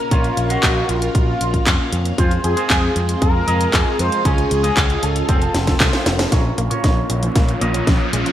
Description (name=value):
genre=italo disco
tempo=116 BPM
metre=4/4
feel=straight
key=Bb minor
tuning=A4 = 443 Hz
part: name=wide unison lead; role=melody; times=0.0-6.1 s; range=F4 to C5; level=-22 LUFS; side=equal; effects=lush chorus, digital delay, shimmer reverb
part: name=string machine, full ensemble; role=sustained chords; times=0.0-8.3 s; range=Ab3 to F5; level=-26 LUFS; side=equal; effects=phaser, ensemble chorus, shimmer reverb
part: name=electric guitar with an envelope filter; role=stabs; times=0.0-8.3 s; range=C4 to F5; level=-26 LUFS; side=right 1 dB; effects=wide subtle chorus, low-pass filter, digital delay, shimmer reverb
part: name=picked electric bass with an envelope filter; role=bass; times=0.1-8.2 s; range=F1 to F2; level=-21 LUFS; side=equal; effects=tube saturation
part: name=electronic kick drum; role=drums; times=0.1-8.0 s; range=none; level=-18 LUFS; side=equal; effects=none
part: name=house drum kit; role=drums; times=0.1-8.3 s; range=handclaps, hi-hat, snare drum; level=-21 LUFS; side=equal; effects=high-pass filter on hats, high-pass filter on snare, high-pass filter on room, gated reverb
part: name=wide unison pluck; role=arpeggios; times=6.3-8.3 s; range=Bb2 to Eb4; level=-25 LUFS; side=left 1 dB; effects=cassette tape, digital delay, shimmer reverb
part: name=riser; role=sound effects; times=7.0-8.3 s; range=none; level=-27 LUFS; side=equal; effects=none
room=moderate plate reverb, RT60 2.2 s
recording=bright 1980s-style digital production, vinyl crackle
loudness=-15 LUFS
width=side -12 dB against mid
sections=0.0-6.3 A section; 6.3-8.3 B section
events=drum fill 5.5-6.3, 6.3-8.3; band accent 6.2; riser 7.0-8.3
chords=0.0 Bbm; 2.2 Fm; 4.3 Db; 5.3 F; 6.3 Bbm